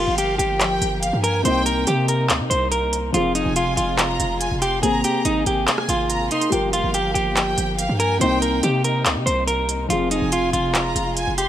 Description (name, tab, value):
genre	hip hop, trap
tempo	142 BPM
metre	4/4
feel	half-time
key	G phrygian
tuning	A4 = 440 Hz
part	clean electric guitar	melody	0.0-11.5 s	Eb4 to C5	-22 LUFS	right 1 dB	none
part	warm studio violin section	second line	0.0-11.5 s	F5 to C6	-28 LUFS	equal	digital delay
part	warm grand piano	accompaniment	0.0-11.5 s	C3 to Bb4	-27 LUFS	left 3 dB	none
part	dark symphonic string section	sustained chords	0.0-11.5 s	C3 to Ab4	-29 LUFS	equal	none
part	hard-hitting 808-style bass	bass	0.0-11.5 s	F1 to C3	-25 LUFS	equal	none
part	trap drum kit	drums	0.2-11.5 s	handclaps, hi-hat, rim click	-22 LUFS	right 1 dB	none
room	light reverb, studio reverb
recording	vinyl crackle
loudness	-18 LUFS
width	side -11 dB against mid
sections	0.0-11.5 A section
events	none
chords	0.0 Gm7; 1.4 Cm7; 3.1 Fm; 4.8 Abadd9; 6.5 Gm7; 8.2 Cm7; 9.9 Fm